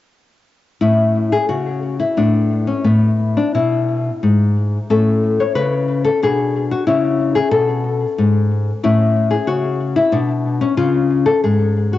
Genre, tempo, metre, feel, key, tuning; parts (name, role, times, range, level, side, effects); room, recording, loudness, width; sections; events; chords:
classical, baroque-style dance for nylon-string guitar; 91 BPM; 3/4; rubato; A major; A4 = 439 Hz
nylon-string guitar; solo; 0.8-12.0 s; G#2 to C#5; -14 LUFS; left 2 dB; cassette tape, analog delay
wet spring reverb, RT60 1.2 s, small room reverb; home recording on cassette, nothing above 7.8 kHz; -14 LUFS; side -14 dB against mid
0.8-12.0 A section
0.8 A; 2.2 Bm/A; 2.8 E/A; 4.9 A; 6.2 G#dim/B; 6.9 A; 10.1 N.C.; 10.8 C#5